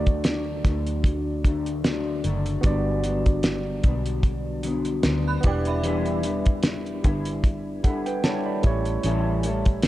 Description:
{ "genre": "indie pop, bedroom pop", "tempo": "75 BPM", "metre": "4/4", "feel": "swing 55% on 16ths", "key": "D major", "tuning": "A4 = 444 Hz", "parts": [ { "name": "barky tine electric piano", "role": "accompaniment", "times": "0.0-9.9 s", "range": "G3 to B5", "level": "-30 LUFS", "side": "right 4 dB", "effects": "overdrive, cassette tape" }, { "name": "mellow electric guitar", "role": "accompaniment", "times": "0.0-9.9 s", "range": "G2 to B4", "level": "-28 LUFS", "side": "left 4 dB", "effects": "analog chorus, warbly pitch drift" }, { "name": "vintage muted fingered electric bass", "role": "bass", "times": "0.0-9.9 s", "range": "E1 to D2", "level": "-29 LUFS", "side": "equal", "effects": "none" }, { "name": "cloth-damped thuddy drum kit", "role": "drums", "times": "0.1-9.9 s", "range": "hi-hat, kick drum, snare drum", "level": "-23 LUFS", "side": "equal", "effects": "vintage 12-bit sampler grit" }, { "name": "synth chime", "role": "second line", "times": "5.3-6.8 s", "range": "E5 to F#6", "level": "-34 LUFS", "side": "right 5 dB", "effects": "ensemble chorus, slapback echo" } ], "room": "small room reverb", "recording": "dark, warm production", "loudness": "-22 LUFS", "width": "side -15 dB against mid", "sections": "0.0-9.9 A section", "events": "none", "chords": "0.0 D; 2.7 Gmaj7; 5.4 Em7; 8.6 A7" }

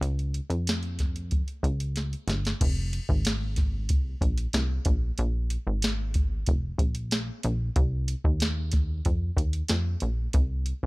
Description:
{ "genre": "indie pop, bedroom pop", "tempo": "93 BPM", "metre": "4/4", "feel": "straight", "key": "unclear", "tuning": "A4 = 439 Hz", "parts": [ { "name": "plucky analog bass", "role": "bass", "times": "0.0-10.9 s", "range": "F1 to F2", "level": "-28 LUFS", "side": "equal", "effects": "none" }, { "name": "soft vintage rhythm box", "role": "drums", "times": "0.0-10.8 s", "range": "crash cymbal, hi-hat, kick drum, snare drum", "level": "-27 LUFS", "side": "equal", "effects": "none" } ], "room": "little or no reverb", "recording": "none", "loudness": "-25 LUFS", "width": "side -24 dB against mid", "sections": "0.0-2.6 A section; 2.6-10.9 B section", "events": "drum fill 2.0-2.6", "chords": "none" }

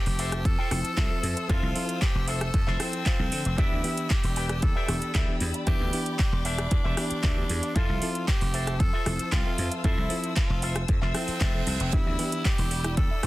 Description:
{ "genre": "nu-disco, nu disco", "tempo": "115 BPM", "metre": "4/4", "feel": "straight", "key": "unclear", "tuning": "A4 = 440 Hz", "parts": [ { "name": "raspy tenor saxophone", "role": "melody", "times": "0.0-13.3 s", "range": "C4 to A4", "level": "-34 LUFS", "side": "equal", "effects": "analog delay" }, { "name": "warm symphonic string section", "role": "sustained chords", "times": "0.0-13.3 s", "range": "C5 to E6", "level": "-39 LUFS", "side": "left 4 dB", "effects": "sidechain pumping" }, { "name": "electric guitar with an envelope filter", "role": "riff", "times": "0.1-11.8 s", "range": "F4 to G5", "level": "-36 LUFS", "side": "equal", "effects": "wide subtle chorus, tape echo" }, { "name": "dry thumbed slap bass", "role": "bass", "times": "0.1-13.3 s", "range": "E1 to D3", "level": "-30 LUFS", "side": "equal", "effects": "none" }, { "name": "house drum kit", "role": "drums", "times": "0.1-13.3 s", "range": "handclaps, hi-hat, rim click", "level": "-33 LUFS", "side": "right 1 dB", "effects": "none" }, { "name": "electronic kick drum", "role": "drums", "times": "0.5-13.1 s", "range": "none", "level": "-26 LUFS", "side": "equal", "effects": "none" }, { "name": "bright reed electric piano", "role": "accompaniment", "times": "0.7-13.3 s", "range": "E3 to E5", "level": "-34 LUFS", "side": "left 1 dB", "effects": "sidechain pumping" }, { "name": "reverse cymbal", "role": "sound effects", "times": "11.3-11.9 s", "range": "none", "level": "-39 LUFS", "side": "right 8 dB", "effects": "none" }, { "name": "soft round pluck", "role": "arpeggios", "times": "11.9-13.3 s", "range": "D4 to E5", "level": "-39 LUFS", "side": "right 3 dB", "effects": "chorus, vintage 12-bit sampler grit, sidechain pumping" } ], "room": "digital ambience", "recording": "dense, heavily limited modern master", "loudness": "-24 LUFS", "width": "side -17 dB against mid", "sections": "0.0-13.3 A section", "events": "reverse cymbal 11.3-11.9", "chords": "0.0 Fmaj7; 3.6 Em7; 7.8 Fmaj7; 11.9 Em7" }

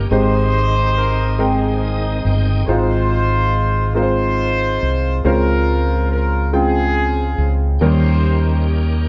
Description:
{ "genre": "gospel", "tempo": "47 BPM (dotted quarters)", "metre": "6/8", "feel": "straight", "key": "Ab major", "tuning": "A4 = 442 Hz", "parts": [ { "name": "clear horn section", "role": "melody", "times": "0.0-9.1 s", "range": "C4 to C5", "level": "-24 LUFS", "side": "equal", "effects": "none" }, { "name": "clear concert grand piano", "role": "accompaniment", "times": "0.0-9.1 s", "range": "Ab2 to G5", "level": "-22 LUFS", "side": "equal", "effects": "none" }, { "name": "bright tonewheel organ", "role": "sustained chords", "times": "0.0-2.7, 7.8-9.1 s", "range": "Eb3 to G5", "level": "-30 LUFS", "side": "equal", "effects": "slow rotary speaker, chorus vibrato" }, { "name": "fingered electric bass", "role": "bass", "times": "0.0-9.1 s", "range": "G1 to Eb2", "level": "-20 LUFS", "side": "equal", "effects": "none" } ], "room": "moderate studio reverb, RT60 0.9 s", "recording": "band playing live in one room, nothing above 7.9 kHz", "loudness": "-17 LUFS", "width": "mono", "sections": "0.0-2.7 A section; 2.7-9.1 A section", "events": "tonewheel organ fill 1.4-2.7", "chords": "0.1 Abmaj7; 2.7 Ab6; 5.2 Dbmaj7; 7.8 Eb7" }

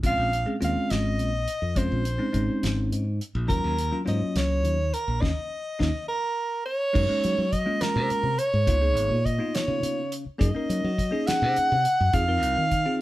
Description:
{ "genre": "electric jazz fusion", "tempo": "69 BPM (dotted quarters)", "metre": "6/8", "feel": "straight", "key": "unclear", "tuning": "A4 = 441 Hz", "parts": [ { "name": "bell-like tine electric piano", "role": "accompaniment", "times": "0.0-13.0 s", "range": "Gb3 to Bb4", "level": "-29 LUFS", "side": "left 1 dB", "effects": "none" }, { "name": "modern bright fingered electric bass", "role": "bass", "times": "0.0-12.8 s", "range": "Ab1 to Gb3", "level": "-27 LUFS", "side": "equal", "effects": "none" }, { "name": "damped 70s drum kit", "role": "drums", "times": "0.0-12.9 s", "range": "crash cymbal, hi-hat, kick drum, snare drum", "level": "-29 LUFS", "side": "equal", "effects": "none" }, { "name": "warm soprano saxophone", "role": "melody", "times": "0.1-13.0 s", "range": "Bb4 to Gb5", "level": "-26 LUFS", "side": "right 1 dB", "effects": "none" } ], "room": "light reverb", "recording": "band playing live in one room", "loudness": "-23 LUFS", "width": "side -16 dB against mid", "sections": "0.0-7.0 A section; 7.0-13.0 B section", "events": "band accent 5.2-7.0; drum fill 6.1-7.0", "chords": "0.0 Bbm9; 3.5 Ebm7; 7.0 Gb6; 8.7 Db13; 10.4 Gb6; 12.1 Fm7" }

